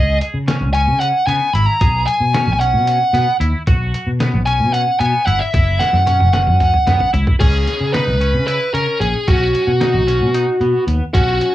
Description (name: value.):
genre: progressive instrumental, band music in an uneven meter.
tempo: 225 BPM (eighths).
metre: 7/8.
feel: straight.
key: C# dorian.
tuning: A4 = 440 Hz.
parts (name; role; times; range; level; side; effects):
smooth overdriven lead guitar; melody; 0.0-11.5 s; F#4 to B5; -16 LUFS; equal; none.
twangy electric guitar; arpeggios; 0.0-11.5 s; B3 to G#4; -26 LUFS; equal; analog chorus.
fretless electric bass; bass; 0.0-11.4 s; F#1 to C#3; -17 LUFS; equal; analog chorus.
trip hop sampler-style drum kit; drums; 0.2-11.5 s; crash cymbal, hi-hat, kick drum, snare drum, toms; -18 LUFS; equal; none.
room: light reverb.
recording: worn, warbling old tape, cassette tape, warbly pitch drift, small room ambience.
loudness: -13 LUFS.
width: side -14 dB against mid.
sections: 0.0-7.4 A section; 7.4-11.5 B section.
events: lead electric guitar solo 0.0-7.4; drum fill 5.8-7.4.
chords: 0.0 C#5; 1.8 G#m7/B; 3.7 B5; 5.5 F#5; 7.4 C#7(no3); 9.3 Badd9.